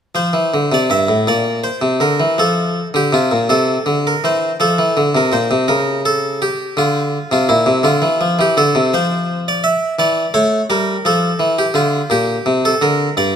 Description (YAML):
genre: classical, baroque-style suite movement for harpsichord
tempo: 55 BPM (dotted quarters)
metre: 6/8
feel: rubato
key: F major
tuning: A4 = 436 Hz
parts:
  - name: harpsichord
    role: solo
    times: 0.1-13.4 s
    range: G2 to E5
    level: -13 LUFS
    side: equal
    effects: none
room: light reverb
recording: close, detailed microphones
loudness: -13 LUFS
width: side -8 dB against mid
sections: 0.1-13.4 A section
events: none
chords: 0.1 F; 1.3 C7/Bb; 2.4 F5; 5.7 N.C.; 6.8 Dm; 8.9 N.C.; 10.0 A5/E; 11.1 Dm; 12.1 Bb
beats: | 0.15 1.27 | 2.38 3.50 | 4.60 5.70 | 6.79 7.86 | 8.93 9.99 | 11.05 12.11 | 13.18